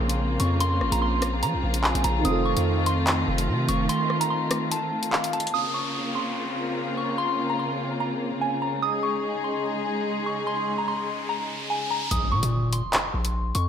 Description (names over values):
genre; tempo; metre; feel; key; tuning
hip hop, drill; 146 BPM; 4/4; half-time; Bb minor; A4 = 441 Hz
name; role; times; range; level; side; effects
soft synth bell; melody; 0.0-13.7 s; F5 to Eb6; -28 LUFS; equal; chorus, phaser, tape echo
dark baby grand piano; accompaniment; 0.0-5.6 s; Db3 to Bb4; -32 LUFS; right 4 dB; none
rich symphonic string section; sustained chords; 0.0-12.1 s; Db3 to Ab4; -28 LUFS; left 1 dB; none
hard-hitting 808-style bass; bass; 0.0-3.9, 12.1-13.7 s; F1 to F3; -25 LUFS; equal; none
drill drum kit; drums; 0.1-5.5, 12.1-13.7 s; handclaps, hi-hat, rim click; -27 LUFS; left 1 dB; none
downlifter, riser and impact; sound effects; 5.5-13.7 s; none; -35 LUFS; equal; none
room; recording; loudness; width
moderate plate reverb, RT60 1.4 s; dreamy mix soaked in reverb; -23 LUFS; side -8 dB against mid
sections
0.0-5.5 A section; 5.5-12.1 B section; 12.1-13.7 C section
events
break 3.9-5.5; riser 10.3-12.1; impact 12.1-13.7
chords
0.0 Bbmadd9; 2.2 F7; 5.5 Bbmadd9; 8.8 Absus4; 12.1 Bbmadd9